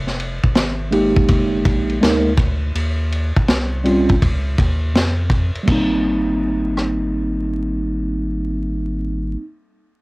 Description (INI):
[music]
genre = hip hop, jazz-hop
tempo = 82 BPM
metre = 4/4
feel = swing 65% on 16ths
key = Ab major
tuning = A4 = 440 Hz
[part]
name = round analog bass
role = bass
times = 0.0-9.4 s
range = F1 to F2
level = -22 LUFS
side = equal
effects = none
[part]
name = vintage drum kit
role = drums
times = 0.1-7.0 s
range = crash cymbal, hi-hat, kick drum, ride cymbal, rim click, snare drum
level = -18 LUFS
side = equal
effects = cassette tape
[part]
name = mellow tine electric piano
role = accompaniment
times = 0.9-9.4 s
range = G3 to Bb4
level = -18 LUFS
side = right 1 dB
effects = medium stereo tremolo, cassette tape, plate reverb
[sound]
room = light reverb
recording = home recording on cassette, vinyl crackle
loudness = -16 LUFS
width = side -24 dB against mid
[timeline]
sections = 0.0-5.7 A section; 5.7-8.6 B section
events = none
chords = 0.0 Fm11; 2.7 Eb7sus2; 5.7 Abmaj9